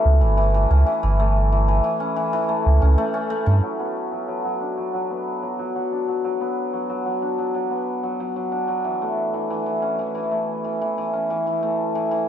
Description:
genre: folktronica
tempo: 92 BPM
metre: 4/4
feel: straight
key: unclear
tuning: A4 = 440 Hz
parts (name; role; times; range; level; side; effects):
- cimbalom; arpeggios; 0.0-12.3 s; E3 to D4; -22 LUFS; left 1 dB; low-pass filter, ping-pong delay
- warm sub bass; bass; 0.1-3.6 s; G1 to G2; -16 LUFS; right 1 dB; none
room: light reverb, studio reverb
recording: dark, warm production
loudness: -20 LUFS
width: side -10 dB against mid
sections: 0.0-3.6 A section; 3.6-12.3 B section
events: none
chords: 0.0 A7/G; 3.6 F#sus4; 8.9 A

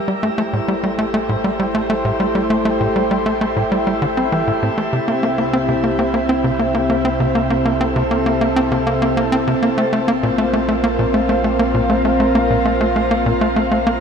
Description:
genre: ambient, sequencer-driven space music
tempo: 99 BPM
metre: 4/4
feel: straight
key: unclear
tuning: A4 = 440 Hz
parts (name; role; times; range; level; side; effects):
- lush unison pad; sustained chords; 0.0-14.0 s; C3 to C5; -18 LUFS; equal; chorus
- warm sub bass; bass; 0.0-14.0 s; A1 to C2; -29 LUFS; equal; none
- tight sequencer bass; riff; 0.1-13.9 s; A2 to C4; -18 LUFS; equal; analog delay
room: wet shimmer reverb, RT60 8.2 s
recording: none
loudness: -15 LUFS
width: side -6 dB against mid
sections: 0.0-14.0 A section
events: fade-in on sub bass 0.0-14.0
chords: 0.1 Am7; 4.9 C; 9.8 Bbsus2

